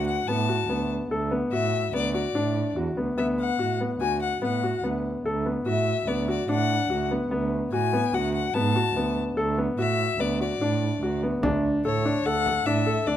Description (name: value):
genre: contemporary instrumental, chamber music in an uneven meter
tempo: 145 BPM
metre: 5/4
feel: straight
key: D lydian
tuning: A4 = 438 Hz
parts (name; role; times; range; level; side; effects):
- warm violin; melody; 0.0-13.2 s; C#5 to A5; -28 LUFS; left 8 dB; none
- clear baby grand piano; arpeggios; 0.0-13.2 s; B3 to A4; -26 LUFS; left 2 dB; none
- muted cello; bass; 0.0-13.2 s; D2 to A2; -28 LUFS; right 4 dB; none
- frame drum; percussion; 11.4-13.2 s; none; -33 LUFS; right 2 dB; none
room: light reverb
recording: close, detailed microphones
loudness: -23 LUFS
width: side -11 dB against mid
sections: 0.0-11.4 A section; 11.4-13.2 B section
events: none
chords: 0.0 D6; 11.4 Dmaj9